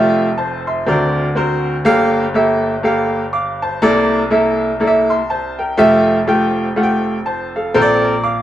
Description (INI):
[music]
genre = gospel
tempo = 122 BPM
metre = 4/4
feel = swing 60% on 8ths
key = F major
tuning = A4 = 437 Hz
[part]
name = bright baby grand piano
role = solo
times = 0.0-8.4 s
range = F1 to D6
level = -13 LUFS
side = equal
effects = none
[sound]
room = moderate large studio reverb, RT60 0.9 s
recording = band playing live in one room, nothing above 10.8 kHz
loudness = -13 LUFS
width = side -12 dB against mid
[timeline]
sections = 0.0-8.4 A section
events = none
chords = 0.0 Fmaj9; 0.9 Daug7; 1.9 Gm9; 3.8 C13; 5.8 Fmaj9; 7.7 Bbmaj9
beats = 0.38 0.87 1.36 | 1.85 2.35 2.84 3.33 | 3.82 4.32 4.81 5.30 | 5.79 6.28 6.77 7.26 | 7.75 8.24